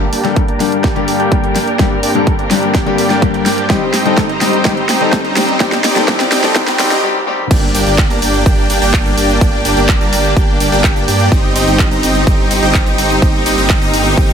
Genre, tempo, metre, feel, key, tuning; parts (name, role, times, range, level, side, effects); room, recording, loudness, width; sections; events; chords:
EDM, festival progressive house; 126 BPM; 4/4; straight; G minor; A4 = 439 Hz
clear concert grand piano; accompaniment; 0.0-7.4 s; G2 to A4; -17 LUFS; left 5 dB; sidechain pumping, tape echo
clear symphonic string section; sustained chords; 0.0-14.3 s; G2 to D5; -20 LUFS; left 1 dB; sidechain pumping, low-pass filter
supersaw chords; riff; 0.0-14.3 s; Bb3 to Bb5; -16 LUFS; right 1 dB; sidechain pumping, low-pass filter, tape echo
riser; sound effects; 0.0-7.0 s; -26 LUFS; right 2 dB
big-room dance drum kit; drums; 0.1-14.3 s; crash cymbal, handclaps, hi-hat, shaker, snare drum, toms; -18 LUFS; equal; overdrive
electronic kick drum; drums; 0.4-14.3 s; -14 LUFS; right 1 dB; overdrive
wide detuned saw bass; bass; 7.5-14.3 s; G1 to G2; -18 LUFS; right 1 dB; chorus, sidechain pumping
light reverb; high-pass filter; -10 LUFS; side -7 dB against mid
0.0-7.5 A section; 7.5-14.3 B section
build-up 0.0-7.5; drum fill 0.0-7.0, 7.3; filter sweep on supersaw synth 0.0-7.5; filter sweep on string section 0.0-7.5; filter sweep 0.0-7.5; break 7.0-7.5; drop 7.5-14.3
0.0 Gm; 3.7 Cm/G; 7.5 Gm; 11.3 Cm/G